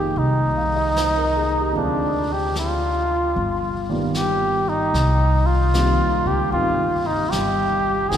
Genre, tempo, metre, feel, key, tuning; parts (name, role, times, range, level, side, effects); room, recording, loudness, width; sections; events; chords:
jazz ballad; 75 BPM; 4/4; swing 68% on 8ths; A4 = 440 Hz
trumpet with cup mute; melody; 0.0-8.2 s; D4 to Ab4; -21 LUFS; equal
warm grand piano; accompaniment; 0.0-8.2 s; D3 to F5; -26 LUFS; right 2 dB
upright bass; bass; 0.0-8.2 s; F1 to Eb2; -23 LUFS; equal
vintage brush drum kit; drums; 0.2-8.2 s; brushed snare drum, hi-hat, snare drum; -34 LUFS; left 2 dB
wet cathedral reverb, RT60 4.3 s; recorded in a church or concert hall; -18 LUFS; side -9 dB against mid
0.0-8.2 A section
0.0 Fm9; 1.8 Dm7b5; 3.4 G7b13; 4.9 Cm7